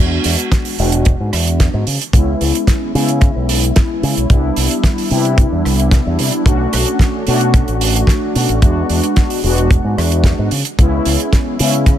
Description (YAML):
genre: nu-disco, nu disco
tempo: 111 BPM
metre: 4/4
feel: straight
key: E mixolydian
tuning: A4 = 442 Hz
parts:
  - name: mellow synth brass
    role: accompaniment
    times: 0.0-12.0 s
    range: G3 to F#4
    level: -18 LUFS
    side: left 1 dB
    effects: chorus, sidechain pumping, digital delay
  - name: fingered electric bass with an envelope filter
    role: bass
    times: 0.0-11.9 s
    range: E1 to C#3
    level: -16 LUFS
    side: equal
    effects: none
  - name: damped 70s drum kit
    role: drums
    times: 0.2-12.0 s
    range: hi-hat, rim click, snare drum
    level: -20 LUFS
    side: right 4 dB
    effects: none
  - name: kick drum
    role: drums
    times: 0.5-12.0 s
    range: none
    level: -12 LUFS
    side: equal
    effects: none
room: small room ambience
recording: none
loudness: -12 LUFS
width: side -11 dB against mid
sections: 0.0-12.0 A section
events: none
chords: 0.0 E7; 1.9 C#m7; 4.3 Cmaj9; 6.5 Bm9; 8.6 E7; 10.5 C#m7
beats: 0.52 1.06 1.60 | 2.14 2.68 3.22 3.76 | 4.30 4.84 5.38 5.92 | 6.47 7.01 7.55 8.09 | 8.63 9.17 9.71 10.25 | 10.79 11.33 11.87